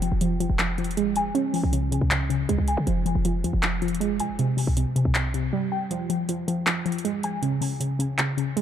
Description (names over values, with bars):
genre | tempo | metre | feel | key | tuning
hip hop, trap | 158 BPM | 4/4 | half-time | F minor | A4 = 436 Hz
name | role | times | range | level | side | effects
warbly dusty pluck | arpeggios | 0.0-8.6 s | C3 to Ab5 | -24 LUFS | equal | chorus, low-pass filter, ping-pong delay
short 808-style bass | bass | 0.0-5.5 s | F1 to Db3 | -26 LUFS | equal | none
trap drum kit | drums | 0.0-8.6 s | handclaps, hi-hat | -29 LUFS | equal | overdrive
room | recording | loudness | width
light reverb | dark, warm production | -22 LUFS | side -9 dB against mid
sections
0.0-8.6 A section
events
filter sweep on synth pluck 0.0-5.9; break 5.5-5.9; kick muted 5.9-8.6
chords
0.0 Fm; 1.4 Db; 2.9 Fm; 4.4 C5; 5.9 Fm; 7.4 Db5